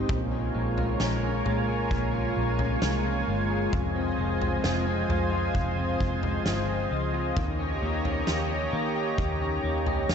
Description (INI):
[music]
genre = dream pop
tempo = 66 BPM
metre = 4/4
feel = straight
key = unclear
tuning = A4 = 441 Hz
[part]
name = lush unison pad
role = sustained chords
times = 0.0-10.1 s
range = F4 to Bb5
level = -30 LUFS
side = right 1 dB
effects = chorus
[part]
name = electric guitar through a small old amp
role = arpeggios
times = 0.0-10.1 s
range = F2 to Ab4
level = -30 LUFS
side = left 2 dB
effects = analog chorus, ping-pong delay
[part]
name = vintage muted fingered electric bass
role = bass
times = 0.0-10.1 s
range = F1 to Eb3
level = -30 LUFS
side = equal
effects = none
[part]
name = huge arena drum kit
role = drums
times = 0.1-10.1 s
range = kick drum, snare drum, toms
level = -32 LUFS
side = equal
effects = none
[sound]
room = light reverb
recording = dark, warm production, nothing above 7.9 kHz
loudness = -25 LUFS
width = side -7 dB against mid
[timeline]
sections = 0.0-10.1 A section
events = none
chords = 0.1 Bbm7; 3.7 Fm7; 7.4 Eb7